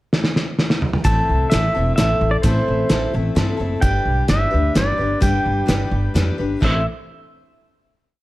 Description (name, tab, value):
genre	folk rock and heartland rock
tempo	129 BPM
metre	3/4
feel	straight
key	A minor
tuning	A4 = 440 Hz
part	cloth-damped thuddy drum kit	drums	0.1-6.7 s	china cymbal, hi-hat, kick drum, snare drum, toms	-20 LUFS	equal	none
part	pedal steel guitar	melody	1.0-6.9 s	C5 to A5	-22 LUFS	right 1 dB	none
part	picked steel-string acoustic guitar	accompaniment	1.0-6.8 s	A2 to C5	-23 LUFS	left 3 dB	none
part	upright bass	bass	1.0-6.8 s	E1 to G2	-20 LUFS	equal	none
room	light reverb, small room ambience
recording	none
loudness	-16 LUFS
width	side -17 dB against mid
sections	0.0-1.1 pickup bar; 1.1-6.6 verse; 6.6-8.0 final chord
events	drum fill 0.1-1.1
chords	0.0 N.C.; 1.1 Am; 3.8 G; 6.6 Am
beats	0.12 0.59 | 1.05 1.52 1.98 | 2.45 2.91 3.38 | 3.84 4.30 4.77 | 5.23 5.70 6.16 | 6.62